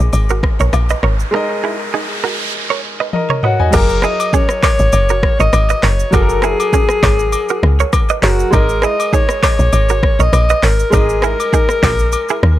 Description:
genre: afrobeats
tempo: 100 BPM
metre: 4/4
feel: swing 55% on 16ths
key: unclear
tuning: A4 = 440 Hz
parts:
  - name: bright grand piano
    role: accompaniment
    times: 0.0-12.6 s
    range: F#3 to G#5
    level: -21 LUFS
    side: left 1 dB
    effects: none
  - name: woody log drum bass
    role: bass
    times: 0.0-12.6 s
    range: F#1 to D#2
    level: -14 LUFS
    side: equal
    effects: none
  - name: afro-pop drum kit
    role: drums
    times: 0.0-12.6 s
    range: crash cymbal, handclaps, hi-hat, kick drum, rim click, shaker, toms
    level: -16 LUFS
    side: equal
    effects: none
  - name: riser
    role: sound effects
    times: 0.1-2.5 s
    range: none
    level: -25 LUFS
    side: right 2 dB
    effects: none
  - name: agogo bells and woodblock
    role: percussion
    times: 0.1-12.3 s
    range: none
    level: -24 LUFS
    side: left 6 dB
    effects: none
  - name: direct-recorded clean electric guitar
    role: riff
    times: 0.3-12.4 s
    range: C#4 to D#5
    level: -20 LUFS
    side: right 8 dB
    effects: none
  - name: warm alto saxophone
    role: melody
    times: 3.4-12.6 s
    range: F#4 to D#5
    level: -18 LUFS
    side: left 1 dB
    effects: ping-pong delay
room: little or no reverb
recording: none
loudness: -12 LUFS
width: side -14 dB against mid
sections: 0.0-3.7 A section; 3.7-12.6 B section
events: riser 0.1-3.7; break 1.3-3.7; drum fill 3.1-3.7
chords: 0.0 G#sus2; 3.7 F#add9; 8.5 G#sus2

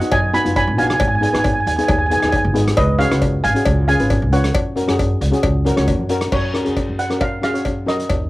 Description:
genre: calypso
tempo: 136 BPM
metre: 4/4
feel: straight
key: F# major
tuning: A4 = 439 Hz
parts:
  - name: steel pan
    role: melody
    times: 0.0-8.3 s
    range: B4 to B5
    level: -20 LUFS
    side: right 2 dB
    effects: cassette tape
  - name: steel pan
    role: accompaniment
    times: 0.0-8.1 s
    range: B3 to C#5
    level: -21 LUFS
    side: left 1 dB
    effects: none
  - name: vintage drum kit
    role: drums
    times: 0.0-8.2 s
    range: crash cymbal, hi-hat, kick drum, rim click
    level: -22 LUFS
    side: equal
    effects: cassette tape
  - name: upright bass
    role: bass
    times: 0.1-8.3 s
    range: G#1 to F#3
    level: -20 LUFS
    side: equal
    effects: none
  - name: cowbell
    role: percussion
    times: 0.1-8.2 s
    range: none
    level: -24 LUFS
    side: left 3 dB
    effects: none
room: light reverb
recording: home recording on cassette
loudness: -15 LUFS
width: side -18 dB against mid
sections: 0.0-6.3 A section; 6.3-8.3 B section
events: none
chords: 0.0 B6; 1.0 G#m; 2.8 C#7sus4; 3.7 C#7; 4.5 F#

